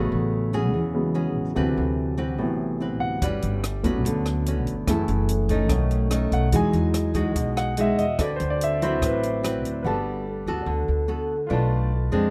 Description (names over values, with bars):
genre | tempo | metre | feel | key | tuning
bossa nova | 145 BPM | 4/4 | straight | unclear | A4 = 440 Hz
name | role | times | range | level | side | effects
clear concert grand piano | accompaniment | 0.0-12.3 s | C3 to A5 | -30 LUFS | equal | none
nylon-string guitar | accompaniment | 0.0-12.3 s | A2 to B4 | -29 LUFS | equal | none
upright bass | bass | 0.0-12.3 s | F#1 to F2 | -28 LUFS | equal | none
compact cocktail drum kit | drums | 3.2-9.7 s | hi-hat, kick drum, rim click | -32 LUFS | equal | none
room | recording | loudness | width
little or no reverb | close, detailed microphones | -24 LUFS | mono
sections
0.0-9.8 A section; 9.8-12.3 B section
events
grand piano solo 0.0-9.8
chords
0.0 Amaj13; 1.6 D13; 3.2 Gmaj9#11; 4.9 F#m7; 5.7 B9; 6.5 Emaj9; 8.2 D13; 9.8 Gmaj9; 11.5 Bm7b5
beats
0.33 0.74 1.16 | 1.57 1.98 2.40 2.81 | 3.22 3.64 4.05 4.46 | 4.88 5.29 5.70 6.12 | 6.53 6.95 7.36 7.77 | 8.19 8.60 9.02 9.43 | 9.84 10.26 10.67 11.09 | 11.50 11.91